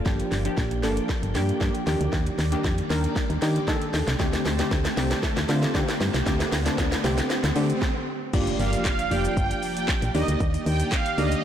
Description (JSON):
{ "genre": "dance-pop", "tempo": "116 BPM", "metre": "4/4", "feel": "straight", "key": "G minor", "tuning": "A4 = 437 Hz", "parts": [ { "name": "string machine, full ensemble", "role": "sustained chords", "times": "0.0-11.4 s", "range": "Eb3 to A5", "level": "-35 LUFS", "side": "right 1 dB", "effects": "ensemble chorus, sidechain pumping, low-pass filter" }, { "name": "riser and impact", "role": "sound effects", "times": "0.8-10.4 s", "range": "none", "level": "-35 LUFS", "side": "right 1 dB", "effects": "none" }, { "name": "glassy wavetable pluck", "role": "accompaniment", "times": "0.1-11.4 s", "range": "D3 to D5", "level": "-28 LUFS", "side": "left 1 dB", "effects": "chorus, sidechain pumping, low-pass filter" }, { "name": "solid FM bass", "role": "bass", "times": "0.1-11.3 s", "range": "F1 to Eb3", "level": "-26 LUFS", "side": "equal", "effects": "sidechain pumping" }, { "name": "house drum kit", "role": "drums", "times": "0.1-11.4 s", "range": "crash cymbal, handclaps, hi-hat, kick drum, shaker, snare drum", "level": "-27 LUFS", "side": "equal", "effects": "none" }, { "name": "supersaw pad", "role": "melody", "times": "8.6-11.3 s", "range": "Eb5 to G5", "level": "-28 LUFS", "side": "right 3 dB", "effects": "none" } ], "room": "light reverb", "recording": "blown-out, overdriven recording, overdrive", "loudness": "-22 LUFS", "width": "side -10 dB against mid", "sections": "0.0-8.3 A section; 8.3-11.4 B section", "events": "build-up 0.0-8.3; drum fill 0.0-7.8; riser 0.8-8.3; stop 7.8-8.3; drop 8.3-11.4; impact 8.3-10.4", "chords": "0.1 Gm7; 1.9 Ebmaj7; 4.2 D7sus4; 8.3 Gm7; 10.1 Ebmaj7", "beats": "| 0.06 0.58 1.09 1.61 | 2.13 2.65 3.16 3.68 | 4.20 4.71 5.23 5.75 | 6.27 6.78 7.30 7.82 | 8.34 8.85 9.37 9.89 | 10.40 10.92 11.44" }